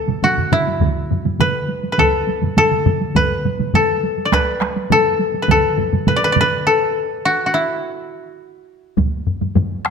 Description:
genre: japanese traditional, taiko drum ensemble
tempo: 103 BPM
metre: 4/4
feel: straight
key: unclear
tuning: A4 = 440 Hz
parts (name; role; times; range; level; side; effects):
- koto; melody; 0.0-9.8 s; E4 to D5; -17 LUFS; left 2 dB; none
- taiko ensemble; percussion; 0.1-9.7 s; none; -23 LUFS; right 3 dB; none
- taiko ensemble; percussion; 0.1-9.9 s; none; -22 LUFS; left 3 dB; none
- taiko ensemble; percussion; 0.1-6.5 s; none; -23 LUFS; right 8 dB; none
- solo taiko drums; percussion; 0.8-9.1 s; none; -24 LUFS; right 3 dB; none
room: moderate concert hall reverb, RT60 1.8 s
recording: none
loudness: -15 LUFS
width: side -6 dB against mid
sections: 0.0-9.0 A section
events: break 6.7-9.0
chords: none

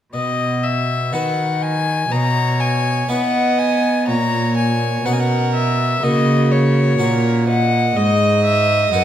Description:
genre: classical, baroque-style sonata movement with continuo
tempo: 62 BPM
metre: 4/4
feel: straight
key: B major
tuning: A4 = 441 Hz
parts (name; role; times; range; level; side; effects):
- warm violin; melody; 0.1-9.0 s; C#5 to A#5; -20 LUFS; left 6 dB; none
- harpsichord; accompaniment; 0.1-9.0 s; F#2 to C#5; -22 LUFS; equal; none
- warm cello; bass; 0.1-9.0 s; F#2 to B3; -19 LUFS; right 1 dB; none
- warm violin; second line; 2.1-9.0 s; F#4 to D#5; -21 LUFS; right 4 dB; none
room: wet scoring stage reverb, RT60 1.5 s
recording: none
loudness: -15 LUFS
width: side -10 dB against mid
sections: 0.1-9.0 A section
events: none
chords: 0.1 B; 2.1 C#m7/B; 4.1 F#/A#; 8.0 G#m

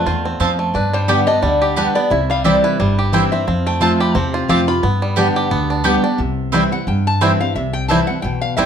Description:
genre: bluegrass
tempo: 176 BPM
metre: 4/4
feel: swing 55% on 8ths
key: unclear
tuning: A4 = 440 Hz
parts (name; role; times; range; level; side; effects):
- lap resonator guitar; second line; 0.0-8.7 s; G4 to B5; -21 LUFS; left 3 dB; none
- picked steel-string acoustic guitar; accompaniment; 0.0-8.7 s; E2 to G4; -18 LUFS; equal; none
- bluegrass banjo; arpeggios; 0.0-8.7 s; F3 to G4; -21 LUFS; right 3 dB; none
- upright bass; bass; 0.1-8.7 s; G1 to G2; -22 LUFS; equal; none
- mandolin; stabs; 0.4-8.7 s; B3 to A5; -21 LUFS; right 3 dB; none
room: moderate studio reverb, RT60 0.8 s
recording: none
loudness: -14 LUFS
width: side -8 dB against mid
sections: 0.0-6.2 A section; 6.2-8.7 A section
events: resonator guitar played with a steel bar solo 0.0-8.7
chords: 0.0 F; 0.8 G; 2.1 C; 3.5 F; 4.8 G; 6.2 C

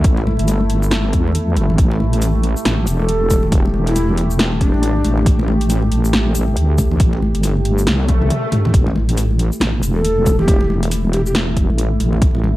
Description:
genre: deep dubstep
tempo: 138 BPM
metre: 4/4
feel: swing 60% on 16ths, half-time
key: unclear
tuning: A4 = 442 Hz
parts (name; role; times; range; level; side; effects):
- deep dark ambient pad; sustained chords; 0.0-12.6 s; A3 to G4; -24 LUFS; equal; chorus, built-in reverb
- wobble bass; bass; 0.0-12.6 s; E1 to E2; -17 LUFS; equal; chorus
- deep house drum kit; drums; 0.0-12.3 s; hi-hat, shaker, snare drum, toms; -21 LUFS; equal; overdrive
- electronic kick drum; drums; 0.0-12.3 s; none; -15 LUFS; equal; overdrive
- congas; percussion; 0.2-12.5 s; none; -24 LUFS; left 1 dB; dub echo
- breathy mellow ney; melody; 3.0-5.2, 10.0-11.3 s; D4 to A4; -22 LUFS; equal; dub echo
- swell; sound effects; 8.0-8.7 s; none; -25 LUFS; left 2 dB; none
room: digital ambience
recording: vinyl crackle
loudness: -14 LUFS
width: side -16 dB against mid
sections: 0.0-12.6 A section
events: drum fill 7.9-8.7; swell 8.0-8.7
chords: 0.0 A5

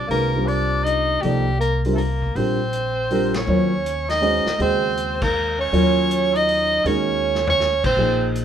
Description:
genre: modal jazz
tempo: 160 BPM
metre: 3/4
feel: swing 64% on 8ths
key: C dorian, Eb dorian from 3.5 s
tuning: A4 = 437 Hz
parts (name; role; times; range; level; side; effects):
- bright soprano saxophone; melody; 0.0-8.3 s; G4 to Eb5; -21 LUFS; right 2 dB; none
- warm tenor saxophone; second line; 0.0-8.3 s; G3 to Eb4; -28 LUFS; equal; none
- dark concert grand piano; accompaniment; 0.0-8.4 s; Db3 to Eb5; -22 LUFS; equal; none
- upright bass; bass; 0.0-8.4 s; Bb1 to Bb2; -25 LUFS; left 1 dB; none
- vintage drum kit; drums; 0.1-8.4 s; crash cymbal, hi-hat, kick drum, ride cymbal, snare drum, toms; -30 LUFS; left 1 dB; none
room: moderate club reverb, RT60 0.8 s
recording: minimal, uncompressed stereo recording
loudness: -18 LUFS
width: side -9 dB against mid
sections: 0.0-3.5 A section; 3.5-8.4 B section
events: band accent 3.3, 5.2, 7.8; drum fill 7.2-7.6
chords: 0.0 Cm11; 2.4 Bb69; 3.5 Eb9sus4

